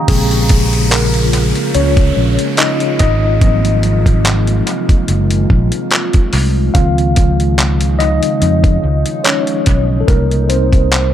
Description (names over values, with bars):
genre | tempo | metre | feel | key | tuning
contemporary R&B | 72 BPM | 4/4 | swing 54% on 16ths | Bb minor | A4 = 442 Hz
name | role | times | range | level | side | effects
mellow tine electric piano | accompaniment | 0.0-11.1 s | Db3 to Bb5 | -17 LUFS | left 1 dB | medium stereo tremolo, analog delay
glassy FM pad | sustained chords | 0.0-11.1 s | C3 to F4 | -20 LUFS | equal | ensemble chorus, built-in reverb
fingered electric bass | bass | 0.1-11.1 s | Gb1 to F2 | -14 LUFS | equal | none
dusty soul sampler-style drum kit | drums | 0.1-11.1 s | crash cymbal, handclaps, hi-hat, kick drum | -14 LUFS | equal | analog delay
downlifter | sound effects | 0.1-6.7 s | none | -24 LUFS | equal | none
room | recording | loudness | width
digital ambience | echo-heavy mix | -10 LUFS | side -11 dB against mid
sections
0.1-11.1 A section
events
tine electric piano solo 0.1-11.1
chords
0.1 Bbm7; 3.0 Ab13; 6.7 Dbmaj9; 10.1 Cm7